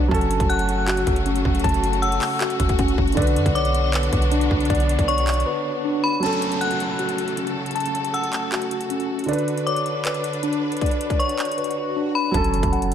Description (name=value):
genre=hip hop, trap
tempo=157 BPM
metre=4/4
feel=half-time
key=F# minor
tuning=A4 = 441 Hz
part: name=dark concert grand piano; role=accompaniment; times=0.0-12.9 s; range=D3 to B4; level=-28 LUFS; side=right 3 dB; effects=none
part: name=warm symphonic string section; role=sustained chords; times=0.0-12.3 s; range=C#3 to B4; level=-29 LUFS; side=left 1 dB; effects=none
part: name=mellow tine electric piano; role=arpeggios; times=0.0-12.9 s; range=C#4 to A5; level=-24 LUFS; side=left 1 dB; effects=medium stereo tremolo, tape echo
part: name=clean 808-style bass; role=bass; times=0.0-5.4, 12.3-12.9 s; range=F#1 to F#2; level=-23 LUFS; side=equal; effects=none
part: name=trap drum kit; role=drums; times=0.1-12.9 s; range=handclaps, hi-hat, kick drum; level=-25 LUFS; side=equal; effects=none
part: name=metallic FM bell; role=second line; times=0.5-12.3 s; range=B5 to F#6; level=-27 LUFS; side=left 3 dB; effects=chorus, tape echo
part: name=downlifter, swell and impact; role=sound effects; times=6.2-12.9 s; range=none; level=-32 LUFS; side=equal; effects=none
room=light reverb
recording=none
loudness=-19 LUFS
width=side -9 dB against mid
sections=0.0-6.2 A section; 6.2-12.3 B section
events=break 5.5-6.2; swell 11.2-12.3; impact 12.3-12.9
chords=0.1 F#m; 3.2 Bmadd9; 6.2 F#m; 9.3 Bmadd9; 12.3 F#m